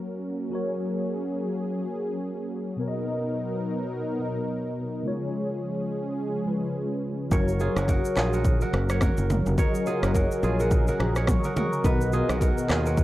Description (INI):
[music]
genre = afrobeats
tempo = 106 BPM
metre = 4/4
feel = swing 58% on 16ths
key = F# major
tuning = A4 = 440 Hz
[part]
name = mellow tine electric piano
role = accompaniment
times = 0.0-13.0 s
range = B2 to D#6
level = -30 LUFS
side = left 1 dB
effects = phaser
[part]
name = warm analog pad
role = sustained chords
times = 0.0-13.0 s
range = C#3 to A#4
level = -31 LUFS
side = equal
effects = chorus
[part]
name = kora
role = riff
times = 7.3-13.0 s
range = E#4 to C#5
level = -31 LUFS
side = right 3 dB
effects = tape echo
[part]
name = fingered electric bass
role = bass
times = 7.3-13.0 s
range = E#1 to D#2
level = -26 LUFS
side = equal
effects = none
[part]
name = deep house drum kit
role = drums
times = 7.3-13.0 s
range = handclaps, kick drum, rim click, shaker, toms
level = -26 LUFS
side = equal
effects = none
[part]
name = congas and bongos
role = percussion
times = 7.3-13.0 s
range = none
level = -33 LUFS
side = equal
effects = none
[sound]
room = little or no reverb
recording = dry, gritty hardware recording, cassette tape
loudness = -24 LUFS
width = side -16 dB against mid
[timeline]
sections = 0.0-7.3 A section; 7.3-13.0 B section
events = none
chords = 0.0 F#; 2.8 Bmaj7; 5.1 C#; 7.3 F#; 11.8 Bmaj7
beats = | 0.52 1.09 1.66 2.22 | 2.79 3.35 3.92 4.49 | 5.05 5.62 6.18 6.75 | 7.32 7.88 8.45 9.02 | 9.58 10.15 10.71 11.28 | 11.85 12.41 12.98